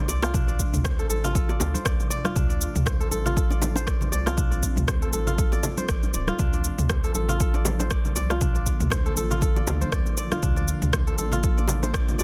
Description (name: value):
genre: afro house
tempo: 119 BPM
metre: 4/4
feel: swing 56% on 16ths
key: D minor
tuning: A4 = 440 Hz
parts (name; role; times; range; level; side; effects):
- ethereal airy pad; sustained chords; 0.2-12.2 s; C3 to F4; -38 LUFS; equal; ensemble chorus, built-in reverb, phaser, sidechain pumping
- kora; arpeggios; 0.0-12.2 s; D4 to D5; -34 LUFS; equal; sidechain pumping, delay
- round analog bass; bass; 0.0-12.2 s; D1 to D2; -30 LUFS; equal; sidechain pumping
- deep house drum kit; drums; 0.1-12.2 s; cabasa, rim click, toms; -32 LUFS; equal; soft clipping on snare
- bongos; percussion; 0.1-12.2 s; none; -34 LUFS; equal; none
- congas; percussion; 0.1-12.2 s; none; -36 LUFS; equal; none
- electronic kick drum; drums; 0.3-12.1 s; none; -28 LUFS; equal; none
room: small room ambience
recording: dense, heavily limited modern master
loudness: -24 LUFS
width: mono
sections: 0.0-12.2 A section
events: none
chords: 0.0 Dm7; 6.4 Bb